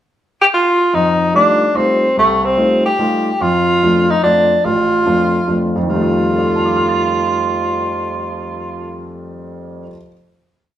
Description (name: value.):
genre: jazz.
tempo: 145 BPM.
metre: 3/4.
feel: swing 66% on 8ths.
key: F mixolydian.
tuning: A4 = 441 Hz.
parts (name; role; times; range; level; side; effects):
warm tenor saxophone; melody; 0.4-9.2 s; A3 to G4; -14 LUFS; equal; none.
warm grand piano; accompaniment; 0.9-10.1 s; A1 to A6; -18 LUFS; left 1 dB; none.
room: wet large studio reverb, RT60 0.9 s.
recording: band playing live in one room.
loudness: -12 LUFS.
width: side -11 dB against mid.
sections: 0.0-0.9 pickup bar; 0.9-5.9 A section; 5.9-8.4 final chord.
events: none.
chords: 0.0 N.C.; 0.9 F9; 3.4 Dm/F; 5.9 F9.